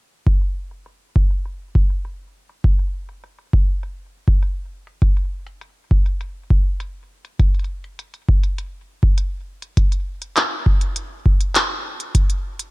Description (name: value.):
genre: IDM.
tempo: 101 BPM.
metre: 4/4.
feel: straight.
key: none.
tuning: none.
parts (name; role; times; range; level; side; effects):
electronic kick drum; drums; 0.3-12.3 s; none; -16 LUFS; equal; overdrive.
organic electronic drum kit; drums; 0.3-12.7 s; handclaps, hi-hat; -21 LUFS; equal; low-pass filter on hats, low-pass filter on snare, low-pass filter on room.
room: little or no reverb.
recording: echo-heavy mix.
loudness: -18 LUFS.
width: side -22 dB against mid.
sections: 0.3-12.7 A section.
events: filter sweep on drum 0.3-12.7.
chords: none.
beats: | 0.27 0.86 1.46 2.05 | 2.64 3.24 3.83 4.42 | 5.02 5.61 6.21 6.80 | 7.40 7.99 8.58 9.18 | 9.77 10.37 10.96 11.55 | 12.15.